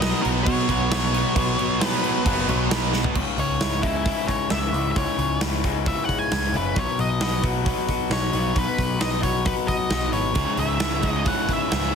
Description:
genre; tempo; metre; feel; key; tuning
quiet-loud alternative rock; 133 BPM; 4/4; straight; C# minor; A4 = 440 Hz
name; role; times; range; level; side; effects
octave-fuzz lead guitar; melody; 0.0-11.9 s; E4 to G#5; -27 LUFS; left 1 dB; distortion, slapback echo
tonewheel organ; sustained chords; 0.0-3.1 s; B3 to D#5; -36 LUFS; right 2 dB; none
crunchy overdriven guitar; riff; 0.0-11.9 s; C#2 to B3; -27 LUFS; left 13 dB; none
distorted electric guitar; riff; 0.0-3.1, 10.3-11.9 s; C#2 to B3; -27 LUFS; right 14 dB; overdrive
overdriven electric guitar; riff; 0.0-3.2 s; B2 to B3; -29 LUFS; right 1 dB; none
growling picked electric bass; bass; 0.0-11.9 s; F#1 to B2; -27 LUFS; right 1 dB; overdrive
huge arena drum kit; drums; 0.0-11.8 s; crash cymbal, hi-hat, kick drum, snare drum, toms; -26 LUFS; right 1 dB; none
electric guitar through a small old amp; arpeggios; 3.1-11.9 s; C#2 to B4; -30 LUFS; right 2 dB; none
room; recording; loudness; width
small room ambience; heavily compressed radio sound; -20 LUFS; side -6 dB against mid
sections
0.0-3.2 A section; 3.2-11.9 B section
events
drum fill 2.9; lead electric guitar solo 3.2-11.9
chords
0.0 Badd9; 3.2 C#m; 6.8 B; 10.4 C#m

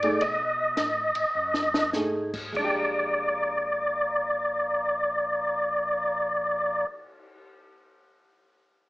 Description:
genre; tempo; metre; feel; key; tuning
soul jazz organ trio; 97-109 BPM; 4/4; swing 66% on 8ths; Bb mixolydian; A4 = 440 Hz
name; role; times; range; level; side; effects
percussive tonewheel organ; melody; 0.0-6.9 s; D5 to D#5; -24 LUFS; equal; slow rotary speaker, overdrive, chorus vibrato
archtop guitar, miked and amplified; accompaniment; 0.0-7.0 s; Ab3 to Ab4; -30 LUFS; right 1 dB; none
tonewheel organ; bass; 0.0-6.8 s; Bb1 to B2; -41 LUFS; equal; chorus vibrato, slow rotary speaker
compact cocktail drum kit; drums; 0.0-7.4 s; crash cymbal, cymbal swell, hi-hat, kick drum, ride cymbal, snare drum; -32 LUFS; equal; none
room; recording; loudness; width
moderate large studio reverb, RT60 0.9 s; small speaker sound; -24 LUFS; side -19 dB against mid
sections
0.0-2.5 A section; 2.5-7.5 B section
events
slowing down 0.0-2.5; drum fill 1.4-1.9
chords
0.2 B6; 2.5 Bb6

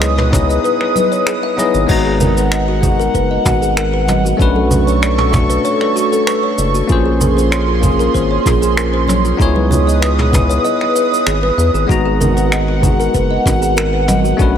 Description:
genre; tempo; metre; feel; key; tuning
sunset chillout; 96 BPM; 4/4; straight; G# minor; A4 = 440 Hz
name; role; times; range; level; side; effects
bell-like tine electric piano; accompaniment; 0.0-14.6 s; G#3 to D#6; -19 LUFS; moving between left 6 dB and right 6 dB; auto-pan, ping-pong delay
airy breathy pad; sustained chords; 0.0-14.6 s; C#4 to D#6; -18 LUFS; equal; chorus, vintage 12-bit sampler grit
kalimba; arpeggios; 0.0-14.5 s; E#4 to E5; -20 LUFS; equal; vintage 12-bit sampler grit, ping-pong delay
round analog bass; bass; 0.0-14.6 s; F#1 to E2; -16 LUFS; equal; none
vintage brush drum kit; drums; 0.0-14.5 s; cabasa, crash cymbal, finger snaps, toms; -22 LUFS; equal; none
electronic kick drum; drums; 0.3-14.5 s; none; -17 LUFS; equal; none
congas; percussion; 0.3-14.2 s; none; -21 LUFS; right 3 dB; none
room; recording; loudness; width
light reverb, small room ambience; none; -12 LUFS; side -9 dB against mid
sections
0.0-1.9 A section; 1.9-14.6 B section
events
none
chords
0.0 C#m9; 1.9 G#m9; 4.4 Bm9; 6.9 A#m9; 9.4 C#m9; 11.9 G#m9

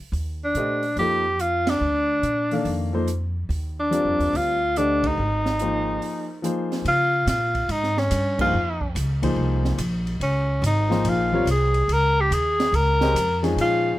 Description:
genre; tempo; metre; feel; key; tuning
modal jazz; 143 BPM; 4/4; swing 66% on 8ths; Db lydian from 6.9 s; A4 = 438 Hz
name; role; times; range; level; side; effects
upright bass; bass; 0.1-14.0 s; Ab1 to Db3; -25 LUFS; equal; none
open jazz drum kit; drums; 0.1-13.7 s; crash cymbal, hi-hat, kick drum, ride cymbal, snare drum; -32 LUFS; right 2 dB; none
warm tenor saxophone; melody; 0.4-14.0 s; Db4 to Bb4; -22 LUFS; equal; none
warm grand piano; accompaniment; 0.6-14.0 s; D3 to F5; -26 LUFS; left 2 dB; none
room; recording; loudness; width
light reverb; none; -20 LUFS; side -15 dB against mid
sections
0.0-6.9 A section; 6.9-14.0 B section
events
band accent 1.6, 5.0, 8.3; break 6.0-6.9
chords
0.1 Bbadd9; 5.2 Ab; 6.9 Db6

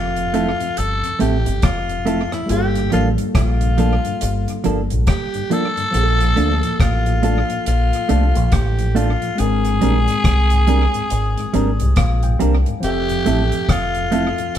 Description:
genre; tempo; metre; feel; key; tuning
lovers rock reggae; 70 BPM; 4/4; swing 61% on 16ths; F major; A4 = 440 Hz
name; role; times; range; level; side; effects
raspy tenor saxophone; melody; 0.0-14.6 s; E4 to A4; -22 LUFS; left 1 dB; none
mellow tine electric piano; accompaniment; 0.0-14.6 s; F3 to Ab5; -26 LUFS; left 1 dB; overdrive, tape echo
deep dub fingered electric bass; bass; 0.0-14.6 s; F1 to D2; -19 LUFS; equal; none
mellow tonewheel organ; accompaniment; 0.2-14.5 s; F2 to F4; -28 LUFS; left 2 dB; slow rotary speaker
deep reggae drum kit; drums; 0.2-14.6 s; hi-hat, kick drum, rim click; -22 LUFS; equal; tape echo
clean electric guitar; stabs; 0.3-14.3 s; F3 to Bb4; -21 LUFS; right 4 dB; none
room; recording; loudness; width
moderate stone room reverb, RT60 0.9 s; band playing live in one room; -15 LUFS; side -10 dB against mid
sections
0.0-14.6 A section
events
tine electric piano fill 11.5-12.8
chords
0.0 Fmaj7; 2.5 Gm9; 5.9 Bbmaj7; 9.4 Abmaj9#11; 12.8 Fmaj7

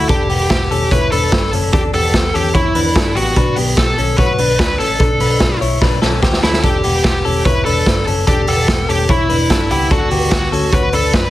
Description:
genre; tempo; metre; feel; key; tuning
jangly indie pop; 147 BPM; 4/4; straight; E dorian; A4 = 438 Hz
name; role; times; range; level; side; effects
high-gain lead guitar; melody; 0.0-11.3 s; E4 to B4; -18 LUFS; right 1 dB; distortion, digital delay
direct-recorded clean electric guitar; arpeggios; 0.0-11.3 s; B3 to C#5; -20 LUFS; left 4 dB; none
vintage muted picked electric bass; bass; 0.0-11.3 s; E1 to G2; -20 LUFS; equal; none
raw garage drum kit; drums; 0.1-11.2 s; hi-hat, kick drum, snare drum; -16 LUFS; equal; none
room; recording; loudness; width
light reverb; heavily compressed radio sound; -12 LUFS; side -15 dB against mid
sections
0.0-11.3 A section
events
drum fill 5.8-6.6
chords
0.1 Em7; 3.4 Bm7; 6.6 Em7; 9.9 D6

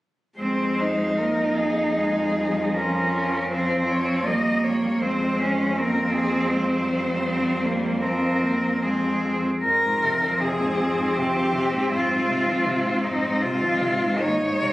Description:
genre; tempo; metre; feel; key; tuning
classical, lyrical piece for cello ensemble; 71-83 BPM; 3/4; rubato; F minor; A4 = 440 Hz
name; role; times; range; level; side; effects
rich cello; melody; 0.4-14.7 s; Eb4 to Eb5; -25 LUFS; left 1 dB; none
rich cello; second line; 0.4-14.7 s; Bb3 to Eb4; -24 LUFS; right 1 dB; none
rich cello; accompaniment; 0.4-14.7 s; Eb2 to Bb3; -28 LUFS; left 1 dB; none
rich cello; bass; 0.4-14.7 s; F2 to Ab2; -30 LUFS; equal; none
room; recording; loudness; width
moderate recital hall reverb, RT60 1.5 s; recorded on a phone in the room, club reverb, compression; -20 LUFS; side -17 dB against mid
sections
0.4-9.6 A section; 9.6-14.7 B section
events
none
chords
0.4 Fm; 2.8 Gm7b5/F; 5.0 Fm; 14.2 Ab/Eb

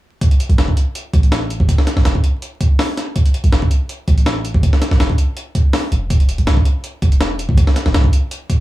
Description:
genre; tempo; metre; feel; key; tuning
drum and bass, jungle; 163 BPM; 4/4; straight; unclear; A4 = 441 Hz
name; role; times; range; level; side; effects
breakbeat sampler-style drum kit; drums; 0.2-8.6 s; hi-hat, kick drum, snare drum; -14 LUFS; equal; none
warm 808-style bass; bass; 0.5-8.0 s; E1 to B1; -16 LUFS; equal; tube saturation
room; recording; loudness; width
little or no reverb; vinyl crackle, small room ambience; -13 LUFS; side -16 dB against mid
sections
0.2-8.6 A section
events
none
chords
none

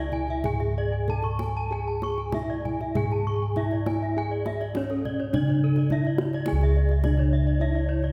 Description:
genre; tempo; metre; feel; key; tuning
Balinese gamelan; 95-106 BPM; 4/4; straight; C# pelog; A4 = 439 Hz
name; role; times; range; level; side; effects
gamelan-type bronze metallophone; melody; 0.0-8.1 s; C#4 to A4; -32 LUFS; equal; slapback echo
gamelan-type bronze metallophone; arpeggios; 0.0-8.1 s; A4 to C#6; -39 LUFS; equal; none
gamelan-type bossed gongs; bass; 0.0-8.1 s; C#2 to G#4; -28 LUFS; equal; none
kendang; percussion; 0.1-8.1 s; none; -36 LUFS; equal; none
gamelan-type bronze metallophone; arpeggios; 0.3-8.0 s; A4 to C#6; -36 LUFS; equal; none
bansuri; second line; 7.6-8.1 s; C#5; -40 LUFS; equal; none
room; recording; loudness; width
wet scoring stage reverb, RT60 1.7 s; heard from further back in the room; -26 LUFS; mono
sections
0.0-6.5 A section; 6.5-8.1 B section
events
none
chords
none

